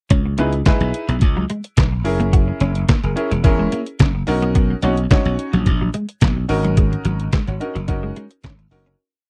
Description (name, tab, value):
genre	early-eighties boogie funk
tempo	108 BPM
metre	4/4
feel	straight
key	C# dorian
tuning	A4 = 440 Hz
part	semi-hollow electric guitar	riff	0.1-9.0 s	F#3 to F#4	-26 LUFS	equal	ensemble chorus
part	slap bass	bass	0.1-8.9 s	E1 to C#2	-22 LUFS	equal	none
part	detuned 8-bit digital drum machine	drums	0.1-9.0 s	handclaps, hi-hat, kick drum, snare drum	-19 LUFS	equal	none
part	clear grand piano	accompaniment	0.4-8.9 s	C#4 to C#5	-25 LUFS	equal	none
room	little or no reverb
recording	dry, close 1970s-style studio recording, lossy compression artefacts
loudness	-18 LUFS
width	mono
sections	0.1-9.0 verse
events	fade-out 6.8-9.0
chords	0.1 C#m9; 2.1 F#9; 4.3 Bmaj9; 6.5 G#9sus4